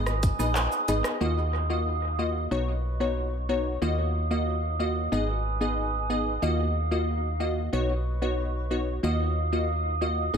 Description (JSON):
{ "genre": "dancehall", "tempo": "92 BPM", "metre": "4/4", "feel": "straight", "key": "Eb minor", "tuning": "A4 = 439 Hz", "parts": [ { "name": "wavetable chord stab", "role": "accompaniment", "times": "0.0-10.4 s", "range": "Bb3 to Eb5", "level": "-29 LUFS", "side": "left 1 dB", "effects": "sidechain pumping, analog delay" }, { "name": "mellow hollow flute section", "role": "sustained chords", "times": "0.0-10.4 s", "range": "Eb4 to Eb6", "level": "-32 LUFS", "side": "right 3 dB", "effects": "sidechain pumping" }, { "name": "solid FM bass", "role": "bass", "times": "0.0-10.4 s", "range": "Ab1 to Eb2", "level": "-28 LUFS", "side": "equal", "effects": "none" }, { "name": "island pop drum kit", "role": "drums", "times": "0.1-1.2 s", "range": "handclaps, hi-hat, kick drum, rim click, shaker", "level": "-31 LUFS", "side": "equal", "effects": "analog delay" }, { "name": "cabasa and woodblock", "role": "percussion", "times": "0.2-1.0 s", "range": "none", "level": "-43 LUFS", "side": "right 7 dB", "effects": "none" } ], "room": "light reverb", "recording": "echo-heavy mix", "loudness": "-25 LUFS", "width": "side -7 dB against mid", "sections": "0.0-1.2 A section; 1.2-10.4 B section", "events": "none", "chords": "0.0 Abm; 1.2 Ebmadd9; 2.5 Badd9; 3.8 Ebmadd9; 5.1 Abm; 6.4 Ebmadd9; 7.7 Badd9; 9.0 Ebmadd9" }